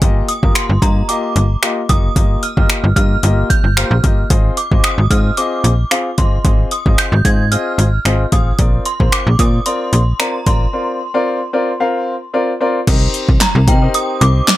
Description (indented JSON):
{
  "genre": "dance-pop",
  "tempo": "112 BPM",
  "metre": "4/4",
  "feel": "straight",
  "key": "unclear",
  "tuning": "A4 = 440 Hz",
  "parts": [
    { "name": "clear grand piano", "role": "accompaniment", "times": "0.0-14.5 s", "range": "Bb3 to F5", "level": "-20 LUFS", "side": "left 2 dB", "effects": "sidechain pumping" },
    { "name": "slap-like FM bass", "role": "bass", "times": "0.0-14.4 s", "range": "F#1 to C3", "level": "-14 LUFS", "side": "equal", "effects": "sidechain pumping" },
    { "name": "deep house drum kit", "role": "drums", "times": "0.0-14.6 s", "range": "crash cymbal, finger snaps, handclaps, hi-hat, kick drum, snare drum", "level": "-14 LUFS", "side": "equal", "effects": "overdrive" },
    { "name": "synth chime", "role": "melody", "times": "0.3-14.6 s", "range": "G5 to Ab6", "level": "-21 LUFS", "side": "right 2 dB", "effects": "ensemble chorus, ping-pong delay" }
  ],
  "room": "little or no reverb",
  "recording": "none",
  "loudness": "-12 LUFS",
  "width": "side -15 dB against mid",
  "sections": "0.0-12.9 A section; 12.9-14.6 B section",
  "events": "break 10.7-12.9",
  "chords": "0.0 Ebadd9; 4.3 Ab6; 8.6 Bbadd9; 12.9 Cm7"
}